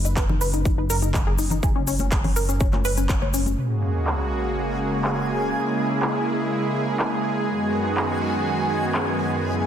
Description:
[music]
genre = progressive house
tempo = 123 BPM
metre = 4/4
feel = straight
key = F# mixolydian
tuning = A4 = 440 Hz
[part]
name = tight sequenced synth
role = arpeggios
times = 0.0-3.5 s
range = C#4 to C#5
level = -28 LUFS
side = left 3 dB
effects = chorus, sidechain pumping, tape echo
[part]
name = dark detuned saw bass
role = bass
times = 0.0-3.6 s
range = F#1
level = -25 LUFS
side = equal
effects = sidechain pumping
[part]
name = big-room dance drum kit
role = drums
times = 0.0-9.3 s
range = handclaps, hi-hat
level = -29 LUFS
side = equal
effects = overdrive, low-pass filter on hats, low-pass filter on snare
[part]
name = cabasa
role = percussion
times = 0.1-3.6 s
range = none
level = -34 LUFS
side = left 4 dB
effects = none
[part]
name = electronic kick drum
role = drums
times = 0.2-3.2 s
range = none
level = -23 LUFS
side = equal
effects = overdrive
[part]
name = congas and bongos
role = percussion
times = 0.3-3.6 s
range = none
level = -32 LUFS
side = left 3 dB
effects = sidechain pumping on perc
[part]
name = supersaw pad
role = sustained chords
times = 3.6-9.7 s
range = F#2 to G#4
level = -22 LUFS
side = right 1 dB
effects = sidechain pumping
[part]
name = sub drop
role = sound effects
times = 3.6-5.5 s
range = none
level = -27 LUFS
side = equal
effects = none
[part]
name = backwards swelling texture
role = texture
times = 4.7-9.7 s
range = G#5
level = -31 LUFS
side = left 2 dB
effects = built-in reverb, sidechain pumping
[sound]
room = moderate digital room reverb, RT60 1.4 s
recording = dense, heavily limited modern master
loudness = -20 LUFS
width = side -9 dB against mid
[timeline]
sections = 0.0-3.6 A section; 3.6-9.7 B section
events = impact 3.6-5.5; filter sweep on drum 3.6-9.7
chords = 0.0 F#5; 3.6 F#add9; 7.5 G#m7/F#

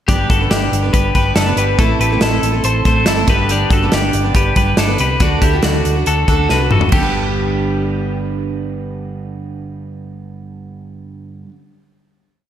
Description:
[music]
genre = jangly indie pop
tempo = 140 BPM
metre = 4/4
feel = straight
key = G major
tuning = A4 = 440 Hz
[part]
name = picked steel-string acoustic guitar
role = accompaniment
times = 0.1-11.6 s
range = G2 to B4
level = -21 LUFS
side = right 5 dB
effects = slapback echo
[part]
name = twelve-string electric guitar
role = arpeggios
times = 0.1-8.2 s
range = D4 to C5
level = -18 LUFS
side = left 3 dB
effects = ping-pong delay, slapback echo
[part]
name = hollow-body short-scale fingered electric bass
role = bass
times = 0.1-11.4 s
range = F#1 to D2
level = -19 LUFS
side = equal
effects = none
[part]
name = modern studio drum kit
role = drums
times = 0.1-7.0 s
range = crash cymbal, hi-hat, kick drum, snare drum, toms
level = -17 LUFS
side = equal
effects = none
[sound]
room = moderate lush hall reverb, RT60 1.9 s, studio reverb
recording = big arena sound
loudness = -13 LUFS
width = side -10 dB against mid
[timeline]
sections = 0.1-6.9 verse; 6.9-10.3 final chord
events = drum fill 6.5-6.9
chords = 0.1 G; 1.8 Am; 3.3 G; 5.2 D; 6.9 G

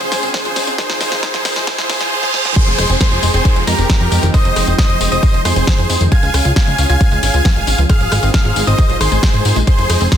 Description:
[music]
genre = uplifting trance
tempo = 135 BPM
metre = 4/4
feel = straight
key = F minor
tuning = A4 = 442 Hz
[part]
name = big supersaw lead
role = melody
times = 0.0-10.2 s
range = G4 to Ab5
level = -19 LUFS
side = right 1 dB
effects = sidechain pumping, tape echo
[part]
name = lush unison pad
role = sustained chords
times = 0.0-10.2 s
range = F3 to G5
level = -26 LUFS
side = equal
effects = chorus, sidechain pumping
[part]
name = wide unison pluck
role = arpeggios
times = 0.0-10.2 s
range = Eb3 to F4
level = -25 LUFS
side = left 3 dB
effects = sidechain pumping, tape echo
[part]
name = plucky analog bass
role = bass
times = 0.0-10.1 s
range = F1 to Ab2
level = -16 LUFS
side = equal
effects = sidechain pumping
[part]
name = house drum kit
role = drums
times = 0.0-10.2 s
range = crash cymbal, hi-hat, ride cymbal, rim click, snare drum, tambourine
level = -20 LUFS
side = left 1 dB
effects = studio reverb, soft clipping on snare
[part]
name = riser, reverse cymbal and downlifter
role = sound effects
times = 0.0-6.1 s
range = none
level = -23 LUFS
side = right 2 dB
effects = none
[part]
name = electronic kick drum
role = drums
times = 0.3-10.2 s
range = none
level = -13 LUFS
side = equal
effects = high-pass filter on kick, studio reverb
[part]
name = plucky unison lead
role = second line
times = 2.6-10.2 s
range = Bb5 to Ab6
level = -23 LUFS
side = left 1 dB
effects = sidechain pumping, tape echo
[sound]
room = light reverb, digital ambience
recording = dense, heavily limited modern master, high-pass filter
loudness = -12 LUFS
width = side -9 dB against mid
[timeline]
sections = 0.0-2.6 A section; 2.6-10.2 B section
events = build-up 0.0-2.6; drum fill 0.0-2.1, 2.2-2.6; riser 0.0-2.1; reverse cymbal 1.7-2.6; drop 2.6-10.2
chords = 0.0 Db; 0.8 Ab6; 2.6 Fm7; 6.1 Db; 7.9 Ab6

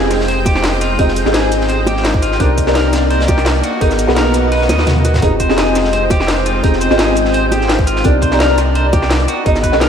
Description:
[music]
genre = liquid drum and bass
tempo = 170 BPM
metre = 4/4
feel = swing 53% on 16ths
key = F dorian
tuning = A4 = 440 Hz
[part]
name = felt-muted upright piano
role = accompaniment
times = 0.0-9.9 s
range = Cb4 to Eb5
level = -17 LUFS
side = left 1 dB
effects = analog chorus, ping-pong delay
[part]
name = lush unison pad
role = sustained chords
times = 0.0-9.9 s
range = Ab3 to G5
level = -20 LUFS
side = equal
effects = chorus
[part]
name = electric guitar at the edge of break-up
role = arpeggios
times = 0.0-9.9 s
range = D4 to Eb5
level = -21 LUFS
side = right 2 dB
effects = analog delay
[part]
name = sub bass with octave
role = bass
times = 0.0-9.9 s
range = F1 to Eb2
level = -17 LUFS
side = equal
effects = none
[part]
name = crunchy breakbeat drum kit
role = drums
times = 0.1-9.9 s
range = hi-hat, snare drum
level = -27 LUFS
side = equal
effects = high-pass filter on hats, high-pass filter on snare, high-pass filter on room
[part]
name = drum and bass drum kit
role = drums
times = 0.1-9.9 s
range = cabasa, hi-hat, snare drum, toms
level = -20 LUFS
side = equal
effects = none
[part]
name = electronic kick drum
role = drums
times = 0.5-9.7 s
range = none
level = -16 LUFS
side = equal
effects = none
[part]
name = bongos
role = percussion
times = 0.5-9.0 s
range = none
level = -24 LUFS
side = right 2 dB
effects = none
[sound]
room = moderate lush hall reverb, RT60 2.0 s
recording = dreamy mix soaked in reverb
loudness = -11 LUFS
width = side -8 dB against mid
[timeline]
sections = 0.0-9.9 A section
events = drum fill 4.7-5.2; kick drops out 4.9-5.2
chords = 0.0 Fm9; 2.4 Cm9; 3.6 Abm9; 5.2 Fm9; 8.0 Cm9; 9.3 Abm9

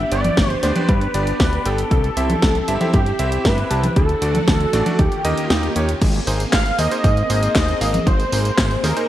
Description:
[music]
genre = italo disco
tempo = 117 BPM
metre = 4/4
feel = straight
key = G major, Ab major from 6.0 s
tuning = A4 = 440 Hz
[part]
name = wide unison lead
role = melody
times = 0.0-9.1 s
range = G4 to F5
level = -22 LUFS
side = equal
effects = lush chorus, cassette tape, digital delay
[part]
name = phased string machine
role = sustained chords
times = 0.0-9.1 s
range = Eb3 to Ab4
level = -27 LUFS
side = left 1 dB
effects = ensemble chorus, phaser
[part]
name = fat analog bass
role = bass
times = 0.0-8.9 s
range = G1 to Ab2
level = -22 LUFS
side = equal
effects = none
[part]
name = bright electric grand piano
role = stabs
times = 0.1-9.1 s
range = A3 to A5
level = -25 LUFS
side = right 1 dB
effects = none
[part]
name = house drum kit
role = drums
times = 0.1-9.1 s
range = congas, crash cymbal, handclaps, hi-hat, snare drum, tambourine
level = -22 LUFS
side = equal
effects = none
[part]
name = electronic kick drum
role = drums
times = 0.4-8.7 s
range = none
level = -19 LUFS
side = equal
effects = none
[sound]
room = light reverb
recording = bright 1980s-style digital production, vinyl crackle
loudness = -15 LUFS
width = side -13 dB against mid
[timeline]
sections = 0.0-6.0 A section; 6.0-9.1 B section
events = kick drops out 5.5-6.0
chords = 0.0 G; 1.9 C; 4.0 D; 5.0 Eb7; 6.0 Abadd9

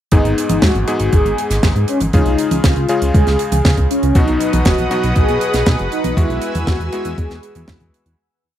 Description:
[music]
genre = italo disco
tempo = 119 BPM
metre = 4/4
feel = straight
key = G# minor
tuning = A4 = 440 Hz
[part]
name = mellow synth brass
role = melody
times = 0.1-7.9 s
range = C#4 to G#4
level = -19 LUFS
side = left 1 dB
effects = chorus, tape echo
[part]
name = clear electric grand piano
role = stabs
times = 0.1-8.2 s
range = G#2 to G#4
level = -22 LUFS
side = left 1 dB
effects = none
[part]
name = chorused synth bass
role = bass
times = 0.1-8.2 s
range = F#1 to G#2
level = -19 LUFS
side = equal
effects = tube saturation
[part]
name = electronic kick drum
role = drums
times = 0.1-7.9 s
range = none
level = -14 LUFS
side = equal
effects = studio reverb
[part]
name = tight funk drum kit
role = drums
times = 0.1-8.2 s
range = hi-hat, snare drum, toms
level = -21 LUFS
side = right 2 dB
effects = studio reverb
[part]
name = lush unison pad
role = sustained chords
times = 4.2-8.2 s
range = B4 to E6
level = -23 LUFS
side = equal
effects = chorus
[sound]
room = little or no reverb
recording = dry, close 1970s-style studio recording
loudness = -13 LUFS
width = side -11 dB against mid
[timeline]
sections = 0.1-8.2 verse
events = fade-out 5.5-8.2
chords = 0.1 G#m; 2.1 C#; 4.2 B; 6.2 Eadd9

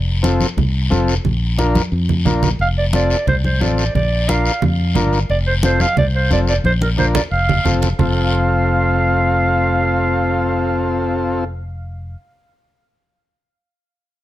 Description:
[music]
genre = latin, cumbia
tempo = 178 BPM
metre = 4/4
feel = straight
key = F major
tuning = A4 = 440 Hz
[part]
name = fingered electric bass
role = bass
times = 0.0-12.1 s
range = F1 to F2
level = -18 LUFS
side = equal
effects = none
[part]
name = overdriven combo organ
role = accompaniment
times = 0.2-11.4 s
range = C4 to Bb4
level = -19 LUFS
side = left 2 dB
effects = none
[part]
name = congas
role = percussion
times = 0.2-8.1 s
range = none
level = -21 LUFS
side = right 2 dB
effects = none
[part]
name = guiro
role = percussion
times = 0.2-8.1 s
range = none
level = -28 LUFS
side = left 6 dB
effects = none
[part]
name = growling clarinet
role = melody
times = 2.6-11.4 s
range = Bb4 to F5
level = -20 LUFS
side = right 2 dB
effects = tape echo
[sound]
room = light reverb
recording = close, detailed microphones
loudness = -14 LUFS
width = side -14 dB against mid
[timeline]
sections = 0.0-8.0 A section; 8.0-10.7 B section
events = drum fill 1.8-2.6, 6.6-8.0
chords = 0.0 F; 1.2 Bb; 2.6 F; 3.9 Bb; 5.3 F; 6.6 Bb; 7.3 F

